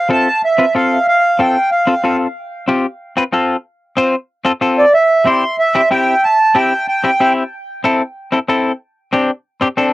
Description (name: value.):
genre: latin.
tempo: 186 BPM.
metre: 4/4.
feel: straight.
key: unclear.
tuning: A4 = 440 Hz.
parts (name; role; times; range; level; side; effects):
accordion; melody; 0.0-2.2, 4.8-7.3 s; D5 to C6; -12 LUFS; right 1 dB; analog delay.
semi-hollow electric guitar; accompaniment; 0.1-9.9 s; C4 to C5; -14 LUFS; left 2 dB; cassette tape.
room: wet booth ambience, RT60 0.2 s.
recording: home recording on cassette.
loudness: -12 LUFS.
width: side -17 dB against mid.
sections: 0.0-9.9 A section.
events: none.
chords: 0.0 F; 4.9 C; 7.5 Am; 8.8 Csus2.